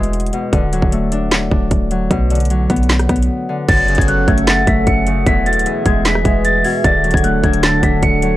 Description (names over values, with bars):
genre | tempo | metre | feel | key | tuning
hip hop, trap | 152 BPM | 4/4 | half-time | F# minor | A4 = 442 Hz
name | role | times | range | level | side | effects
Celtic harp | accompaniment | 0.0-8.4 s | E2 to D4 | -18 LUFS | left 2 dB | none
clean 808-style bass | bass | 0.0-8.4 s | D1 to B1 | -18 LUFS | equal | none
trap drum kit | drums | 0.0-8.3 s | crash cymbal, handclaps, hi-hat, kick drum, rim click, snare drum | -17 LUFS | equal | none
large celesta | melody | 3.7-8.4 s | F#6 to C#7 | -17 LUFS | equal | none
warbly tape-like pad | sustained chords | 3.9-8.4 s | D3 to F#5 | -20 LUFS | right 2 dB | chorus, built-in reverb
room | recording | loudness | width
little or no reverb | dry, gritty hardware recording | -12 LUFS | side -15 dB against mid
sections
0.0-3.7 A section; 3.7-8.4 B section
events
break 3.3-3.7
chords
0.0 E; 0.5 D; 2.1 Bm; 3.7 F#m; 5.3 E; 6.8 D